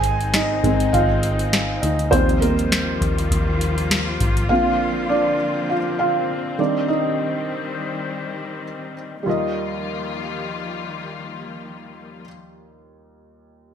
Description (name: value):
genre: piano-driven pop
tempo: 101 BPM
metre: 4/4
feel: swing 56% on 16ths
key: Eb major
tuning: A4 = 440 Hz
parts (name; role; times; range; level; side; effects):
- felt-muted upright piano; accompaniment; 0.0-13.7 s; Eb2 to Ab5; -22 LUFS; right 1 dB; wide subtle chorus
- muted studio string section; sustained chords; 0.0-12.2 s; D3 to F4; -28 LUFS; left 4 dB; none
- vintage muted picked electric bass; bass; 0.0-4.5 s; Ab1 to Eb2; -23 LUFS; left 1 dB; none
- booming analog drum machine; drums; 0.0-4.5 s; hi-hat, kick drum, snare drum; -22 LUFS; left 1 dB; none
room: moderate plate reverb, RT60 1.4 s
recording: bright 1980s-style digital production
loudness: -19 LUFS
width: side -8 dB against mid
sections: 0.0-9.3 A section; 9.3-11.6 B section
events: felt piano solo 0.0-9.3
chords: 0.0 Ab; 2.1 Ebadd9; 4.5 Bbadd9; 6.6 Cm; 9.3 Ebadd9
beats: 0.34 0.94 1.53 | 2.12 2.72 3.31 3.91 | 4.50 5.10 5.69 6.29 | 6.88 7.48 8.07 8.67 | 9.26 9.86 10.45 11.05